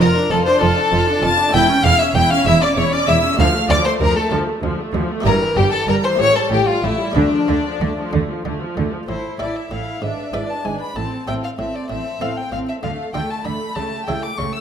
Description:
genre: classical, baroque-style concerto movement with solo episodes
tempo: 64 BPM (dotted quarters)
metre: 6/8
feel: straight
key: D minor, A minor from 9.1 s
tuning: A4 = 440 Hz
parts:
  - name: rich studio violin section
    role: melody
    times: 0.0-14.6 s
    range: G4 to A6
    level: -25 LUFS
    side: left 2 dB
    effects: none
  - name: rich violin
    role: melody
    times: 0.0-14.6 s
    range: D4 to E6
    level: -20 LUFS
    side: left 2 dB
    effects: none
  - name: rich chamber violin section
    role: second line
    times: 0.0-14.6 s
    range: D4 to E6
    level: -24 LUFS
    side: left 3 dB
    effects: none
  - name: buff-stop harpsichord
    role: accompaniment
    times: 0.0-14.6 s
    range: D2 to B4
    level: -28 LUFS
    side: equal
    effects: none
  - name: rich symphonic viola section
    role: accompaniment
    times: 0.0-14.6 s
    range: E3 to F4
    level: -24 LUFS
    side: right 1 dB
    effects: none
  - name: clear studio cello section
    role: bass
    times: 0.0-14.5 s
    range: D2 to D3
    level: -23 LUFS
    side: right 3 dB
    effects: none
  - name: rich chamber double bass section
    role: bass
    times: 0.0-14.5 s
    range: E1 to D2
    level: -24 LUFS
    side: right 4 dB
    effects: none
room: wet recital hall reverb, RT60 1.3 s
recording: none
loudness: -16 LUFS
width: side -8 dB against mid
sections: 0.0-9.1 A section; 9.1-14.6 B section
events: none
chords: 0.0 Dm/F; 1.5 A/E; 3.4 Dm; 5.3 Edim/G; 6.2 A7; 7.2 Dm; 9.1 A5; 10.0 E7/G#; 11.0 Am; 12.8 Dm; 13.8 A7/C#

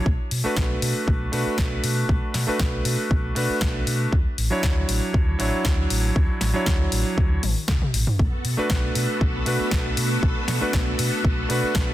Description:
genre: nu-disco, nu disco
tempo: 118 BPM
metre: 4/4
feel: straight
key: B minor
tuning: A4 = 441 Hz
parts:
  - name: warm electric grand piano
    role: accompaniment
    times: 0.0-11.9 s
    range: F#3 to C#5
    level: -26 LUFS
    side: right 1 dB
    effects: sidechain pumping, digital delay
  - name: fingered electric bass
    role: bass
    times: 0.1-11.9 s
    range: A1 to B2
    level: -25 LUFS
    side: equal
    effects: none
  - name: electronic kick drum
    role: drums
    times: 0.1-11.9 s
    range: none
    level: -23 LUFS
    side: equal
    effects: none
  - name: house drum kit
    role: drums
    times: 0.3-11.9 s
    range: hi-hat, snare drum, toms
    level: -28 LUFS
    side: left 1 dB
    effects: none
  - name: string machine, full ensemble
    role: sustained chords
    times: 8.2-11.9 s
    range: B3 to A4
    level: -29 LUFS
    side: right 1 dB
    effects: ensemble chorus, sidechain pumping
room: light reverb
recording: dense, heavily limited modern master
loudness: -20 LUFS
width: side -14 dB against mid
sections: 0.0-11.9 A section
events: drum fill 7.4-8.2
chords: 0.1 Bm7; 4.1 Dmaj9; 8.2 Bm7

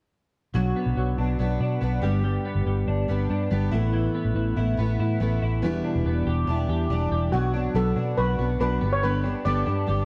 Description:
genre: indie pop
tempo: 142 BPM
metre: 4/4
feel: straight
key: B minor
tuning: A4 = 441 Hz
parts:
  - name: picked steel-string acoustic guitar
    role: accompaniment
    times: 0.5-10.1 s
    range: E2 to G4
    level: -30 LUFS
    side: equal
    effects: none
  - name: vintage muted fingered electric bass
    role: bass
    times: 0.5-10.1 s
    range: E1 to B2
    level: -27 LUFS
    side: equal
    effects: none
  - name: twelve-string electric guitar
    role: arpeggios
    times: 0.6-10.1 s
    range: E3 to G4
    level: -32 LUFS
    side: equal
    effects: analog chorus
  - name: steel pan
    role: melody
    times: 7.3-10.1 s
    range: F#4 to D5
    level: -30 LUFS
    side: equal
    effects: none
room: moderate spring reverb, RT60 1.4 s, studio ambience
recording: worn, warbling old tape, cassette tape, warbly pitch drift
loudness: -25 LUFS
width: mono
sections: 0.5-7.3 A section; 7.3-10.1 B section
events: none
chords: 0.5 Bm; 2.0 G; 3.7 Asus2; 5.6 Em7; 7.3 Bm; 8.8 G

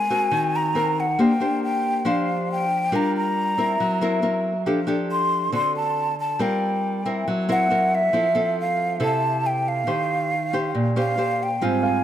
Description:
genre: bossa nova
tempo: 138 BPM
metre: 4/4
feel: straight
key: unclear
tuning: A4 = 440 Hz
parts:
  - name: breathy mellow jazz flute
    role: melody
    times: 0.0-12.0 s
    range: Fb5 to C6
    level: -23 LUFS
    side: equal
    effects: none
  - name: nylon-string guitar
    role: accompaniment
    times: 0.0-12.0 s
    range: Ab2 to C5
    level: -23 LUFS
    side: left 1 dB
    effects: none
  - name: mellow trombone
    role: second line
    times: 11.6-12.0 s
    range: C4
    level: -24 LUFS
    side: right 7 dB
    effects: none
  - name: dark grand piano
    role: accompaniment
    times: 11.8-12.0 s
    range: F5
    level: -24 LUFS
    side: right 8 dB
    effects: none
room: moderate plate reverb, RT60 3.0 s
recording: none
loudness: -20 LUFS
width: side -10 dB against mid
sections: 0.0-11.6 A section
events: none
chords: 0.0 Ab9; 1.2 Bb69; 2.9 Gm7; 3.8 Gb7#11; 4.7 F69; 5.5 D7; 6.4 Gm7; 7.3 Gb7#11; 8.1 Fmaj7; 9.9 Eb13

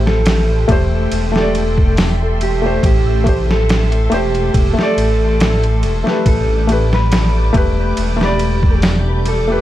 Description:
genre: trip hop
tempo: 70 BPM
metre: 4/4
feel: swing 54% on 16ths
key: A minor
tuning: A4 = 439 Hz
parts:
  - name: felt-muted upright piano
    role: accompaniment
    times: 0.0-9.6 s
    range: A3 to D5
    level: -20 LUFS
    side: left 2 dB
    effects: tremolo, tape echo
  - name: string machine, cellos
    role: sustained chords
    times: 0.0-9.6 s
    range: G4 to D6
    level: -26 LUFS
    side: equal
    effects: ensemble chorus
  - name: dark detuned saw bass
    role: bass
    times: 0.0-9.6 s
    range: E1 to A1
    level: -16 LUFS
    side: equal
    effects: none
  - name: mellow electric guitar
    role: melody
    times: 0.1-9.6 s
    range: G4 to B4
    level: -21 LUFS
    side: right 2 dB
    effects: spring reverb, tape echo
  - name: trip hop sampler-style drum kit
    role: drums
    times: 0.1-9.5 s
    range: hi-hat, kick drum, ride cymbal, snare drum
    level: -18 LUFS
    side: equal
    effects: small room ambience
room: little or no reverb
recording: echo-heavy mix, vinyl crackle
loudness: -12 LUFS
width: side -13 dB against mid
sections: 0.0-9.6 A section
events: none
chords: 0.0 Am7

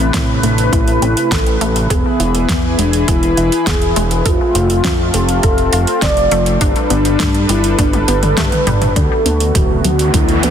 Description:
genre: synthwave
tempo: 102 BPM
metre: 4/4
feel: straight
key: unclear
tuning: A4 = 445 Hz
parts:
  - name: warm velvety synth lead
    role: melody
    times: 0.0-10.5 s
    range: B3 to D5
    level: -18 LUFS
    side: equal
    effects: chorus, ping-pong delay
  - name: warm analog pad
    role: sustained chords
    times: 0.0-10.5 s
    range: C3 to B4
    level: -20 LUFS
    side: equal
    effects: chorus, sidechain pumping
  - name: wide unison pluck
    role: arpeggios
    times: 0.0-10.5 s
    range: F#3 to A4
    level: -23 LUFS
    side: left 1 dB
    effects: cassette tape, ping-pong delay
  - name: fat analog bass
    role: bass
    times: 0.0-10.5 s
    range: D1 to A2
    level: -17 LUFS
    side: equal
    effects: sidechain pumping
  - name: electronic kick drum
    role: drums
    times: 0.1-10.3 s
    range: none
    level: -18 LUFS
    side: equal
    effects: none
  - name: pop drum kit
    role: drums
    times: 0.1-10.5 s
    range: hi-hat, snare drum, toms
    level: -20 LUFS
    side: right 1 dB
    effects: none
  - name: riser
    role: sound effects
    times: 9.6-10.5 s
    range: none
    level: -21 LUFS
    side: right 1 dB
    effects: none
room: light reverb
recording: dense, heavily limited modern master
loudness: -11 LUFS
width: side -8 dB against mid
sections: 0.0-9.0 A section; 9.0-10.5 B section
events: filter sweep on synth arpeggio sound 0.0-9.0, 9.0-10.5; drum fill 7.8-9.0, 9.0-10.5; riser 9.6-10.5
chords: 0.0 Amadd9; 1.9 E; 4.3 F; 6.6 Gadd9; 9.0 D6

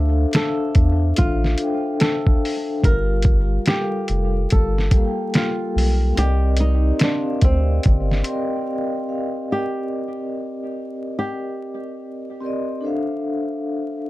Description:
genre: lo-fi hip hop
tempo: 72 BPM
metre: 4/4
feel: swing 63% on 16ths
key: C dorian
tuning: A4 = 441 Hz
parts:
  - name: flamenco guitar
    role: melody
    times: 0.0-12.4 s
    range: C4 to Bb4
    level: -27 LUFS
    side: equal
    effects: tape echo
  - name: vibraphone with soft mallets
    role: accompaniment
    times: 0.0-14.1 s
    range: G3 to G5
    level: -24 LUFS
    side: left 1 dB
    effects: cassette tape
  - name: round analog bass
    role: bass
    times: 0.0-8.2 s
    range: F1 to E2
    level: -18 LUFS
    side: equal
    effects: none
  - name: lo-fi sampler-style drum kit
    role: drums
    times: 0.3-8.5 s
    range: finger snaps, hi-hat, kick drum, snare drum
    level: -18 LUFS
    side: equal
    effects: none
room: light reverb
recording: vinyl crackle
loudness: -18 LUFS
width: side -17 dB against mid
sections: 0.0-9.5 A section; 9.5-14.1 B section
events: break 8.7-9.5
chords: 0.0 Dm9; 2.8 Gm9; 6.2 Cm9; 12.8 Dm9

